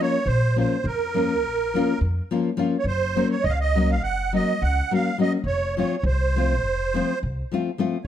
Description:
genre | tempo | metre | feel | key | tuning
balkan folk, Balkan wedding band | 208 BPM (eighths) | 9/8 | straight | unclear | A4 = 441 Hz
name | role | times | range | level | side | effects
musette accordion | melody | 0.0-8.1 s | Bb4 to Gb5 | -25 LUFS | right 5 dB | plate reverb
nylon-string guitar | accompaniment | 0.0-8.0 s | F3 to Gb4 | -23 LUFS | left 4 dB | none
upright bass | bass | 0.3-8.1 s | F1 to F2 | -24 LUFS | equal | none
room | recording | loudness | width
moderate studio reverb, RT60 0.6 s | none | -20 LUFS | side -10 dB against mid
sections
0.0-8.1 A section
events
none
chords
0.0 Bbm; 2.8 Gb; 5.4 F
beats
| 0.26 0.55 0.83 1.12 1.41 1.70 1.99 2.27 2.56 | 2.85 3.14 3.43 3.71 4.00 4.29 4.58 4.87 5.16 | 5.45 5.73 6.02 6.31 6.60 6.89 7.18 7.47 7.76 | 8.05

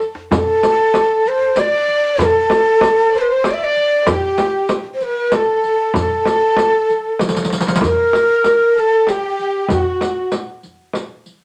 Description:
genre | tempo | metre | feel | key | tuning
Persian modal ensemble | 96 BPM | 3/4 | straight | A dastgah shur | A4 = 442 Hz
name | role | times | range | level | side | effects
riq | percussion | 0.0-11.3 s | none | -25 LUFS | equal | none
tombak | percussion | 0.0-11.1 s | none | -30 LUFS | equal | none
breathy ney | melody | 0.3-10.3 s | F#4 to E5 | -17 LUFS | equal | none
dark symphonic violin section | second line | 0.3-10.3 s | F#4 to D5 | -26 LUFS | equal | none
frame drum | percussion | 0.3-11.1 s | none | -22 LUFS | equal | none
room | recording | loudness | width
moderate studio reverb, RT60 0.6 s | none | -16 LUFS | mono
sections
0.0-7.8 A section; 7.8-11.4 B section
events
drum fill 0.0-0.3, 7.2-7.8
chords
none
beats
| 0.31 0.94 1.57 | 2.19 2.82 3.44 | 4.07 4.70 5.32 | 5.95 6.57 7.20 | 7.82 8.45 9.07 | 9.70 10.32 10.95

